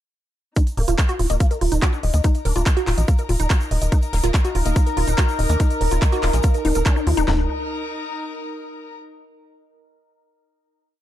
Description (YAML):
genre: psychedelic trance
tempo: 143 BPM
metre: 4/4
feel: straight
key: unclear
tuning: A4 = 438 Hz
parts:
  - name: woody wave-folded pluck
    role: riff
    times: 0.6-7.5 s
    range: D4 to F5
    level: -26 LUFS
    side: moving between left 6 dB and right 6 dB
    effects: chorus, auto-pan, vintage 12-bit sampler grit, sidechain pumping, ping-pong delay
  - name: drum and bass drum kit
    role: drums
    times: 0.6-7.4 s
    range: handclaps, kick drum, snare drum, toms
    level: -18 LUFS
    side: equal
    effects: overdrive
  - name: techno drum kit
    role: drums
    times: 0.6-7.3 s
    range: handclaps, hi-hat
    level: -28 LUFS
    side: equal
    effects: none
  - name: tube shaker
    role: percussion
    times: 0.6-7.3 s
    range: none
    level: -37 LUFS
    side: right 1 dB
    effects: none
  - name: warm chamber string section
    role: texture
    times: 0.6-8.9 s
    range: Eb4 to Bb5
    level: -32 LUFS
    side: left 3 dB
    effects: sidechain pumping
  - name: resonant blip pluck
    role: second line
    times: 0.8-6.9 s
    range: Ab3 to D4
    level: -35 LUFS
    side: left 4 dB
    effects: phaser, sidechain pumping, high-pass filter, tape echo
  - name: tight sequencer bass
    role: bass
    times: 0.8-7.5 s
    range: Eb1 to Eb2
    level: -20 LUFS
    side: equal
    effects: none
  - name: evolving wavetable pad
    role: sustained chords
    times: 4.2-7.3 s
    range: Eb4 to Bb4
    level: -28 LUFS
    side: right 1 dB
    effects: phaser, built-in reverb, sidechain pumping
room: little or no reverb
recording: dark, warm production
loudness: -18 LUFS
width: side -12 dB against mid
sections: 0.6-7.3 groove; 7.3-9.0 final chord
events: fade-in on string section 0.6-7.3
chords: 0.6 Eb5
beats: | 0.56 0.98 1.40 1.82 | 2.24 2.66 3.08 3.50 | 3.92 4.34 4.76 5.18 | 5.60 6.02 6.44 6.86 | 7.28 7.70 8.12 8.54